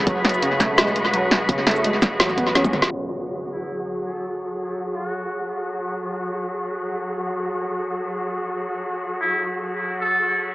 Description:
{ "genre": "half-time drum and bass", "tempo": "169 BPM", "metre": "4/4", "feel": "half-time", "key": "F# minor", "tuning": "A4 = 437 Hz", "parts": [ { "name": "rich symphonic cello section", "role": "sustained chords", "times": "0.0-10.5 s", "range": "F#3 to B4", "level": "-25 LUFS", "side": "equal", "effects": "sidechain pumping" }, { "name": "long sustained 808-style bass", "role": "bass", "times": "0.0-2.9 s", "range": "E1 to A1", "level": "-34 LUFS", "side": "equal", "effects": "none" }, { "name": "warbly dusty pluck", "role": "arpeggios", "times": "0.1-2.7 s", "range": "C#3 to C#4", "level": "-24 LUFS", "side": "right 1 dB", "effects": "chorus, dub echo" }, { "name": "drum and bass drum kit", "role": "drums", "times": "0.1-2.9 s", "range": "hi-hat, shaker, snare drum, toms", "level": "-21 LUFS", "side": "equal", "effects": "low-pass filter on hats, low-pass filter on snare, low-pass filter on perc, low-pass filter on toms, low-pass filter on room, tape echo" }, { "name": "electronic kick drum", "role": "drums", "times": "0.1-2.7 s", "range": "none", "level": "-24 LUFS", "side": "equal", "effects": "none" }, { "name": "impact", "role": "sound effects", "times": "2.9-4.3 s", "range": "none", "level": "-38 LUFS", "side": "equal", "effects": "none" }, { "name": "trumpet with metal mute", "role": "melody", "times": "3.5-5.4, 9.2-10.4 s", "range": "E4 to A4", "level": "-27 LUFS", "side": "equal", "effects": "dub echo" } ], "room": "wet spring reverb, RT60 1.8 s", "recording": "echo-heavy mix, low-pass filter, AM radio sound", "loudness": "-20 LUFS", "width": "side -18 dB against mid", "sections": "0.0-2.9 A section; 2.9-10.5 B section", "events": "drop 0.0-2.9; drum fill 2.6-2.9; band accent 2.8; impact 2.9-4.3; filter sweep 2.9-10.5", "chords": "0.0 F#madd9", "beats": "| 0.07 0.42 0.78 1.13 | 1.49 1.84 2.20 2.55 | 2.91 3.26 3.62 3.97 | 4.33 4.68 5.04 5.39 | 5.75 6.10 6.46 6.81 | 7.17 7.53 7.88 8.23 | 8.59 8.95 9.30 9.65 | 10.01 10.37" }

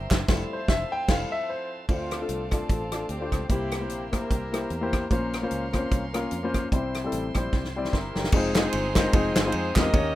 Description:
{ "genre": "uptempo gospel", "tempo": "149 BPM", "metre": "4/4", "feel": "swing 57% on 8ths", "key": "unclear", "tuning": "A4 = 441 Hz", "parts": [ { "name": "bright tonewheel organ", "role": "sustained chords", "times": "0.0-10.2 s", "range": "F3 to C5", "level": "-40 LUFS", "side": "right 4 dB", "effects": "overdrive, stopped rotary speaker" }, { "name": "dark studio string section", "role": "sustained chords", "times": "0.0-8.3 s", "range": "Db4 to C6", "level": "-43 LUFS", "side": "left 1 dB", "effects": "none" }, { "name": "fingered electric bass", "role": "bass", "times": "0.0-10.2 s", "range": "F1 to F2", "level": "-33 LUFS", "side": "equal", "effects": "none" }, { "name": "natural country drum kit", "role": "drums", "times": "0.1-10.0 s", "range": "crash cymbal, hi-hat, kick drum, ride cymbal, rim click, snare drum", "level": "-25 LUFS", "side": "equal", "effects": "none" }, { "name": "group handclap", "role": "percussion", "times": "0.1-0.2, 8.6-9.8 s", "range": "none", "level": "-34 LUFS", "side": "right 3 dB", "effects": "none" }, { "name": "warm grand piano", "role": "accompaniment", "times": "0.3-10.2 s", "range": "Bb2 to C6", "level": "-29 LUFS", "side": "left 2 dB", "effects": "none" }, { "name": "mellow horn section", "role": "melody", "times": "1.9-4.9, 7.9-10.2 s", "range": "A3 to Eb5", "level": "-31 LUFS", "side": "equal", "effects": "none" } ], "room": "light reverb", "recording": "rough home demo mix", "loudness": "-24 LUFS", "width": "side -15 dB against mid", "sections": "0.0-1.9 A section; 1.9-8.3 B section; 8.3-10.2 C section", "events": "grand piano solo 0.0-1.9; band accent 0.3-1.9; drum fill 7.5-8.3", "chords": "0.3 Fmaj7; 1.9 Dm7; 3.5 C7; 5.1 Bbmadd9; 6.7 C; 8.3 Fm7", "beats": "| 0.28 0.69 1.09 1.49 | 1.89 2.29 2.69 3.10 | 3.50 3.90 4.30 4.71 | 5.11 5.51 5.92 6.32 | 6.72 7.12 7.53 7.93 | 8.33 8.73 9.13 9.54 | 9.94" }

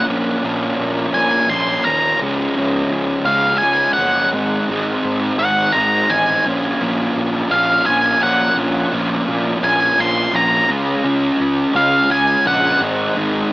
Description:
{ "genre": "post-rock", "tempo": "57 BPM (dotted quarters)", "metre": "6/8", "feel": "straight", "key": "Bb minor", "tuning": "A4 = 440 Hz", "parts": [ { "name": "octave-fuzz lead guitar", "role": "melody", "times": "0.0-12.8 s", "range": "F5 to C6", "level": "-16 LUFS", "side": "equal", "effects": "distortion, analog delay" }, { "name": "fuzz guitar", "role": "riff", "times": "0.0-13.5 s", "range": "Ab2 to F4", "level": "-18 LUFS", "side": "equal", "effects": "distortion" }, { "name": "fuzz fingered electric bass", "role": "bass", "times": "0.1-13.4 s", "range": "Gb1 to Bb2", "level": "-25 LUFS", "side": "equal", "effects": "overdrive" } ], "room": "light reverb", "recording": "AM radio sound", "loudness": "-14 LUFS", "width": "side -21 dB against mid", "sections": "0.0-13.5 A section", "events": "build-up 0.0-13.5", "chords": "0.0 Bbm; 2.2 Db; 4.3 Ab; 6.5 Bbm; 10.7 Db; 12.8 Ab", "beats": "| 0.09 1.15 | 2.21 3.27 | 4.34 5.40 | 6.46 7.52 | 8.58 9.64 | 10.70 11.75 | 12.81" }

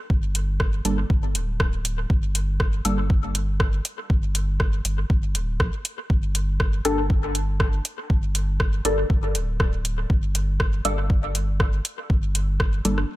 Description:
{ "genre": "dub techno", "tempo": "120 BPM", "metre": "4/4", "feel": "straight", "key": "G minor", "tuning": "A4 = 440 Hz", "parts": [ { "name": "warm sub bass", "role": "bass", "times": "0.1-13.1 s", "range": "D1 to Bb1", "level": "-25 LUFS", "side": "equal", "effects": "sidechain pumping" }, { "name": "electronic kick drum", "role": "drums", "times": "0.1-12.7 s", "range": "none", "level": "-22 LUFS", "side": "equal", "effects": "none" }, { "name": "deep house drum kit", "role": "drums", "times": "0.3-13.1 s", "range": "hi-hat, rim click", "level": "-28 LUFS", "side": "equal", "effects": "dub echo" }, { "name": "filtered dub chord stab", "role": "stabs", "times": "0.8-3.0, 6.8-13.0 s", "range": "G3 to A4", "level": "-27 LUFS", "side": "left 1 dB", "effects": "phaser, sidechain pumping, dub echo" } ], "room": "little or no reverb", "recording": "echo-heavy mix", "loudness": "-21 LUFS", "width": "side -17 dB against mid", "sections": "0.0-13.2 A section", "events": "none", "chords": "0.0 G5", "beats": "| 0.10 0.60 1.10 1.60 | 2.10 2.60 3.10 3.60 | 4.10 4.60 5.10 5.60 | 6.10 6.60 7.10 7.60 | 8.10 8.60 9.10 9.60 | 10.10 10.60 11.10 11.60 | 12.10 12.60" }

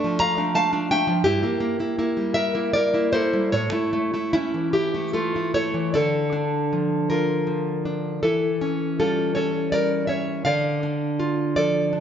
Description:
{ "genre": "romantic piece for solo classical guitar", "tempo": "48-58 BPM (dotted quarters)", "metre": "6/8", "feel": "rubato", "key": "D minor", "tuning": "A4 = 442 Hz", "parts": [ { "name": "nylon-string guitar", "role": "solo", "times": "0.0-12.0 s", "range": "G2 to Bb5", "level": "-20 LUFS", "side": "equal", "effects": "none" } ], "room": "moderate concert hall reverb, RT60 1.8 s", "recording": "nothing above 7.6 kHz", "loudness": "-20 LUFS", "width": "side -8 dB against mid", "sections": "0.0-6.0 A section; 6.0-12.0 B section", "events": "none", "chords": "0.0 Dm/F; 1.2 Edim/G; 3.5 A; 6.0 Dm; 8.2 A7/E; 10.4 Dm", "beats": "0.20 | 1.25 2.35 | 3.52 4.75 | 5.95 7.11 | 8.24 9.36 | 10.45 11.56" }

